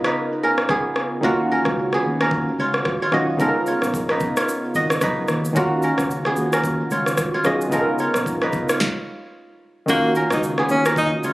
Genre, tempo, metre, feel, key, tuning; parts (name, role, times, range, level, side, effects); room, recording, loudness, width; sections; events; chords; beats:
afrobeats; 111 BPM; 4/4; swing 58% on 16ths; Eb minor; A4 = 440 Hz
warm analog keys; accompaniment; 0.0-11.3 s; Db3 to Bb4; -23 LUFS; equal; chorus
kora; riff; 0.0-11.3 s; Bb3 to Eb5; -23 LUFS; right 1 dB; ping-pong delay
afro-pop drum kit; drums; 0.0-11.3 s; kick drum, rim click, shaker, snare drum; -24 LUFS; equal
fingered electric bass; bass; 1.2-11.3 s; Ab1 to Eb2; -27 LUFS; equal
breathy tenor saxophone; melody; 9.9-11.1 s; Bb3 to Eb4; -20 LUFS; equal; ping-pong delay
moderate plate reverb, RT60 1.7 s, digital ambience; recorded on a phone in the room, club reverb; -18 LUFS; side -19 dB against mid
0.0-9.9 A section; 9.9-11.3 B section
stop 8.8-9.9
0.0 Db13; 1.2 Ebm9; 3.4 Db13; 5.6 Ebm9; 7.7 Db13; 9.9 Ebm9
0.15 0.69 | 1.24 1.77 2.32 2.86 | 3.40 3.94 4.48 5.02 | 5.56 6.10 6.64 7.18 | 7.72 8.26 8.80 9.34 | 9.88 10.42 10.96